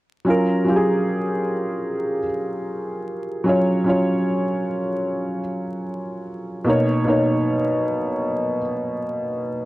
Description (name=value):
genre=hip hop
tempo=75 BPM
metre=4/4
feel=swing 57% on 16ths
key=F# major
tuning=A4 = 440 Hz
part: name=felt-muted upright piano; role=accompaniment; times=0.2-9.7 s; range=B2 to C#5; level=-20 LUFS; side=equal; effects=cassette tape, low-pass filter
room=moderate plate reverb, RT60 3.0 s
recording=vinyl crackle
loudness=-20 LUFS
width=side -18 dB against mid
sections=0.3-9.7 A section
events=none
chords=0.3 F#maj7; 6.7 Bmaj9